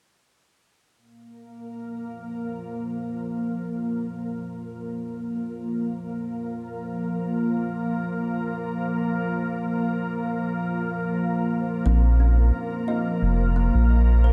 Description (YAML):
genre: ambient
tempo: free time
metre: none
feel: none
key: Bb minor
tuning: A4 = 440 Hz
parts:
  - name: soft additive organ-like pad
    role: sustained chords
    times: 1.5-14.3 s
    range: F3 to Bb4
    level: -29 LUFS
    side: equal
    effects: ensemble chorus, built-in reverb
  - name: kalimba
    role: arpeggios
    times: 11.9-14.3 s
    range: Bb3 to Eb5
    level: -34 LUFS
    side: equal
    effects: tape echo
  - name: round analog bass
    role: bass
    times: 11.9-14.3 s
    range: F1 to Bb1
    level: -20 LUFS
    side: equal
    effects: tube saturation
room: light reverb, small room reverb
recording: echo-heavy mix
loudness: -25 LUFS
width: mono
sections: 0.9-14.3 A section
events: filter sweep on ambient pad 0.9-14.3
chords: 0.9 Bb5